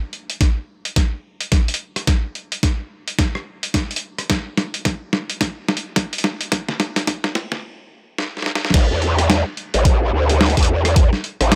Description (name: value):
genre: glitch hop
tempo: 108 BPM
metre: 4/4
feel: swing 60% on 16ths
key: unclear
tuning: A4 = 441 Hz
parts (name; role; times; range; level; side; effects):
- boom bap sampler-style drum kit; drums; 0.1-11.6 s; crash cymbal, hi-hat, rim click, snare drum; -23 LUFS; equal; none
- electronic kick drum; drums; 0.4-11.1 s; none; -19 LUFS; equal; overdrive
- growl bass; bass; 8.7-11.6 s; A1 to E2; -19 LUFS; equal; chorus, overdrive
room: little or no reverb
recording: high-pass filter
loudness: -20 LUFS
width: mono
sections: 0.0-8.7 A section; 8.7-11.6 B section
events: build-up 0.0-8.7; drum fill 0.0-7.6, 8.2-8.7; filter sweep 0.0-8.7; stop 7.6-8.7; drop 8.7-11.6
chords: none